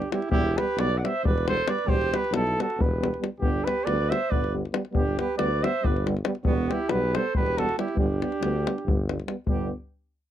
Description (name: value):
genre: balkan folk, Balkan brass band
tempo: 276 BPM (eighths)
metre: 7/8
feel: straight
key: G major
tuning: A4 = 441 Hz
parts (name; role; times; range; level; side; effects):
- dark cornet; melody; 0.0-9.7 s; F#4 to F#5; -28 LUFS; right 1 dB; none
- mellow alto saxophone; second line; 0.0-9.7 s; B3 to D5; -32 LUFS; right 8 dB; none
- mellow tuba; bass; 0.0-9.7 s; E1 to D2; -29 LUFS; left 1 dB; none
- davul; percussion; 0.0-9.7 s; none; -28 LUFS; left 2 dB; none
- mellow euphonium; accompaniment; 0.1-9.7 s; G3; -33 LUFS; right 5 dB; none
- warm euphonium; accompaniment; 0.1-9.7 s; B3; -35 LUFS; left 4 dB; none
room: little or no reverb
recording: dry, close 1970s-style studio recording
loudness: -23 LUFS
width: side -11 dB against mid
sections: 0.0-9.5 A section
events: speeding up 0.0-10.3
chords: 0.3 Em; 3.4 G; 6.5 Em; 8.0 G